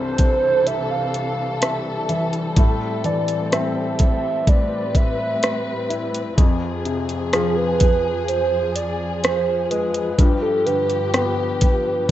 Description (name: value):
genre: pop ballad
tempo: 63 BPM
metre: 4/4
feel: straight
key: C major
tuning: A4 = 440 Hz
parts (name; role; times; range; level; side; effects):
- hollow clarinet-like synth lead; melody; 0.0-12.1 s; Ab4 to F5; -22 LUFS; right 2 dB; chorus, phaser
- clear baby grand piano; accompaniment; 0.0-12.1 s; C2 to E4; -26 LUFS; left 3 dB; none
- dark studio string section; sustained chords; 0.0-12.1 s; F2 to B4; -25 LUFS; left 1 dB; none
- smooth R&B drum kit; drums; 0.2-11.8 s; hi-hat, kick drum, rim click; -18 LUFS; equal; none
room: light reverb, small room ambience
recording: rough home demo mix, nothing above 7.9 kHz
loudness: -18 LUFS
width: side -13 dB against mid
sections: 0.0-12.1 A section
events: none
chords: 0.0 C6; 2.6 Am7; 6.4 Fm; 10.2 G7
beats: 0.66 1.62 | 2.57 3.52 4.47 5.42 | 6.38 7.33 8.28 9.23 | 10.19 11.14 12.09